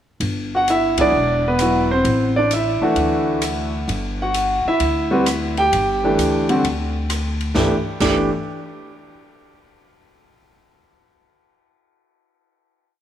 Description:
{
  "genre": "jazz piano trio",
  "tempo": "131 BPM",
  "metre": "4/4",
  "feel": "swing 67% on 8ths",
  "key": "G major",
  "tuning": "A4 = 440 Hz",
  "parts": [
    { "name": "upright bass", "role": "bass", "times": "0.2-8.3 s", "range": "E1 to D2", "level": "-24 LUFS", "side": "equal", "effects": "none" },
    { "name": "open jazz drum kit", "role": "drums", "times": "0.2-8.2 s", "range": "crash cymbal, hi-hat, kick drum, ride cymbal, rim click, snare drum", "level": "-27 LUFS", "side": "equal", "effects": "none" },
    { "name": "warm concert grand piano", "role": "melody", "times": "0.5-8.3 s", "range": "D3 to G5", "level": "-18 LUFS", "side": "equal", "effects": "diffuse ambient delay" }
  ],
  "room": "moderate plate reverb, RT60 1.6 s, small room ambience",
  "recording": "dreamy mix soaked in reverb",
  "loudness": "-16 LUFS",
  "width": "side -10 dB against mid",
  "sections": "0.2-7.6 A section; 7.6-9.4 final chord",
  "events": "band accent 0.9",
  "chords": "0.2 G5; 1.1 E5; 2.1 Am; 3.0 Dadd9; 3.9 G5"
}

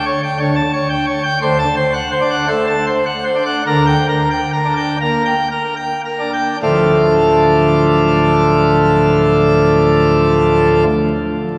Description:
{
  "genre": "classical, organ toccata",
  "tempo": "68-119 BPM",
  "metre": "4/4",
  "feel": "straight",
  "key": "D minor",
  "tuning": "A4 = 440 Hz",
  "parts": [
    { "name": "pipe organ, plenum", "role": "solo", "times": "0.0-10.8 s", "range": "D1 to A5", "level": "-15 LUFS", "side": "equal", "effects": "none" }
  ],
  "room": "wet cathedral reverb, RT60 5.3 s",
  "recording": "vinyl crackle",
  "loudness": "-14 LUFS",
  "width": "mono",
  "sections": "0.0-6.6 A section; 6.6-11.6 B section",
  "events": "slowing down 0.4-6.6",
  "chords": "0.0 A7/D; 1.4 D7; 3.7 Gm/D; 6.6 Dm"
}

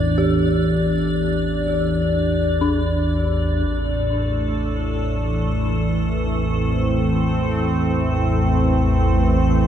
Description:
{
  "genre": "dark ambient drone",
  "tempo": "free time",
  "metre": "none",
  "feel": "none",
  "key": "unclear",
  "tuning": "A4 = 438 Hz",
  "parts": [
    { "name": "dark detuned synth bell", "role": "arpeggios", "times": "0.0-9.7 s", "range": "C4 to A4", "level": "-28 LUFS", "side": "left 2 dB", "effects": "chorus, phaser, diffuse ambient delay" },
    { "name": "analog drone", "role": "drone", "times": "0.0-9.7 s", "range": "A1 to E2", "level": "-21 LUFS", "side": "equal", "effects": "chorus" },
    { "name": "icy glass pad", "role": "texture", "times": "0.0-9.7 s", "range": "A3 to D5", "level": "-24 LUFS", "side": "equal", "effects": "chorus, built-in reverb" },
    { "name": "sweeping resonant pad", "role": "sustained chords", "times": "3.7-9.7 s", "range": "A2 to C4", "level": "-21 LUFS", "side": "right 1 dB", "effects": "chorus" }
  ],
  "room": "wet cathedral reverb, RT60 6.1 s",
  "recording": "in a vast, echoing space",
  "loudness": "-18 LUFS",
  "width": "side -9 dB against mid",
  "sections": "0.0-3.7 A section; 3.7-9.7 B section",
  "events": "none",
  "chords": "0.0 Dm/A; 3.7 Am"
}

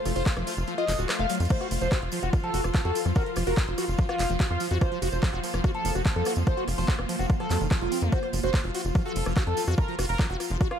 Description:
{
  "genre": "psychedelic trance",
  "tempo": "145 BPM",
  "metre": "4/4",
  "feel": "straight",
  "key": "F major",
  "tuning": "A4 = 440 Hz",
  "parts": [
    { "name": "pulsing gated texture", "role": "sustained chords", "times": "0.0-10.8 s", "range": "F3 to F4", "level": "-35 LUFS", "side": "right 1 dB", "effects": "chorus, built-in reverb, sidechain pumping" },
    { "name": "clear studio string section", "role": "texture", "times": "0.0-10.8 s", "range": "F4 to C6", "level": "-38 LUFS", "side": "left 2 dB", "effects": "sidechain pumping" },
    { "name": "liquid acid bass", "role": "riff", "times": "0.1-10.7 s", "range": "Eb3 to Gb4", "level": "-34 LUFS", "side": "moving between left 4 dB and right 4 dB", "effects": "phaser, auto-pan, sidechain pumping, ping-pong delay" },
    { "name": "tight sequencer bass", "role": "bass", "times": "0.1-10.6 s", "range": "Eb1 to F2", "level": "-28 LUFS", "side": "equal", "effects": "tube saturation" },
    { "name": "techno drum kit", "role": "drums", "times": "0.1-10.8 s", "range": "crash cymbal, handclaps, hi-hat, rim click", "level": "-35 LUFS", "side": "equal", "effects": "none" },
    { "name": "tambourine", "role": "percussion", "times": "0.1-10.7 s", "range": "none", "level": "-41 LUFS", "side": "right 4 dB", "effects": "none" },
    { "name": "overdriven synth lead", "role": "melody", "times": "0.2-10.8 s", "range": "F4 to F5", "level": "-32 LUFS", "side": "equal", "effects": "chorus, phaser, cassette tape, sidechain pumping, tape echo" },
    { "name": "electronic kick drum", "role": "drums", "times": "0.3-10.7 s", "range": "none", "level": "-24 LUFS", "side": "equal", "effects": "none" }
  ],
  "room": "light reverb",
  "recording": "dark, warm production",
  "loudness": "-24 LUFS",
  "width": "side -8 dB against mid",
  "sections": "0.0-10.8 A section",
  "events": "kick drops out 0.7-1.5; drum fill 1.3",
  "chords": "0.0 F5"
}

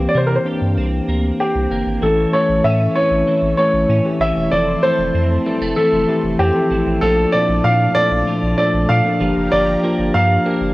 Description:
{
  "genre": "pop",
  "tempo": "96 BPM",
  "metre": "4/4",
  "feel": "straight",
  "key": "unclear",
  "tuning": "A4 = 439 Hz",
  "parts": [
    { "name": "clear baby grand piano", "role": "melody", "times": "0.0-10.7 s", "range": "G4 to F5", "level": "-17 LUFS", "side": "equal", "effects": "none" },
    { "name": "bell-like tine electric piano", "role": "accompaniment", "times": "0.0-10.7 s", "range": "Bb2 to A4", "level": "-20 LUFS", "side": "left 2 dB", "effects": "medium stereo tremolo, cassette tape" },
    { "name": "twelve-string electric guitar", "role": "riff", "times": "0.0-10.7 s", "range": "E3 to G4", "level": "-23 LUFS", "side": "right 2 dB", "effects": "ensemble chorus, cassette tape" },
    { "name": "round analog bass", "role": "bass", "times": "0.0-10.7 s", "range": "E1 to C3", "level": "-20 LUFS", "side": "equal", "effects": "none" },
    { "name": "brassy analog pad", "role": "sustained chords", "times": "2.0-10.7 s", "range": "A3 to C#6", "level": "-28 LUFS", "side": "equal", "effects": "chorus, cassette tape" }
  ],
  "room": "moderate spring reverb, RT60 2.0 s",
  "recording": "home recording on cassette",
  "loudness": "-14 LUFS",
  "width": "side -19 dB against mid",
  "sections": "0.0-2.0 A section; 2.0-10.7 B section",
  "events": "none",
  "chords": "0.0 C7; 2.0 A; 4.5 Fmaj7; 7.0 Bbmaj7; 9.2 Gm7"
}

